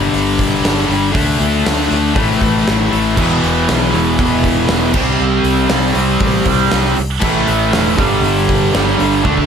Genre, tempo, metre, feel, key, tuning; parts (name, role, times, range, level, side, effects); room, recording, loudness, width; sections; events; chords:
hard rock; 119 BPM; 4/4; straight; A4 = 438 Hz
cranked stack guitar; riff; 0.0-9.5 s; E2 to D4; -17 LUFS; left 6 dB; overdrive
scooped high-gain guitar; riff; 0.0-9.5 s; E2 to D4; -18 LUFS; right 2 dB; distortion
vintage muted fingered electric bass; bass; 0.0-9.5 s; E1 to D2; -20 LUFS; right 1 dB
gated 80s drum kit; drums; 0.1-9.5 s; crash cymbal, hi-hat, kick drum, snare drum; -18 LUFS; equal
overdriven semi-hollow guitar; riff; 3.2-9.5 s; E2 to D4; -18 LUFS; right 13 dB; phaser
light reverb; -12 LUFS; side -7 dB against mid
0.0-9.5 A section
drum fill 9.2
0.0 G5; 1.1 D5; 2.2 A5; 3.2 E5; 4.9 C5; 7.2 A5; 8.0 G5